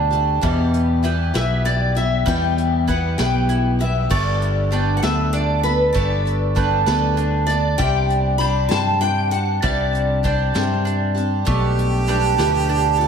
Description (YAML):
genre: acoustic folk duo or small band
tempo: 65 BPM (dotted quarters)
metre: 6/8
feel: straight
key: G major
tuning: A4 = 440 Hz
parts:
  - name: picked steel-string acoustic guitar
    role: melody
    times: 0.0-10.3 s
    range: B4 to B5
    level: -23 LUFS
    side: left 3 dB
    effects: ensemble chorus, ping-pong delay
  - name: picked twelve-string acoustic guitar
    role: accompaniment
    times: 0.0-13.1 s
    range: E2 to A4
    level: -23 LUFS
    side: left 2 dB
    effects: wide subtle chorus
  - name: bowl-back mandolin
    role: arpeggios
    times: 0.0-13.1 s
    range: G3 to G5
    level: -25 LUFS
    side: right 8 dB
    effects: ping-pong delay
  - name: fingered electric bass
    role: bass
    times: 0.0-13.1 s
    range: G1 to G2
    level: -20 LUFS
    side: equal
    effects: none
  - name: vintage brush drum kit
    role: drums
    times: 0.1-13.1 s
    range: crash cymbal, hi-hat, kick drum, snare drum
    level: -27 LUFS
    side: equal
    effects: none
  - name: clear harmonica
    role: second line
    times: 11.5-13.1 s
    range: G4 to A4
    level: -23 LUFS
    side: right 2 dB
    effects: ping-pong delay
room: light reverb, studio reverb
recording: none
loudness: -16 LUFS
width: side -7 dB against mid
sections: 0.0-4.1 A section; 4.1-13.1 A section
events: none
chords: 0.4 Em; 4.1 Gadd9; 7.8 Csus2; 11.5 Gadd9/B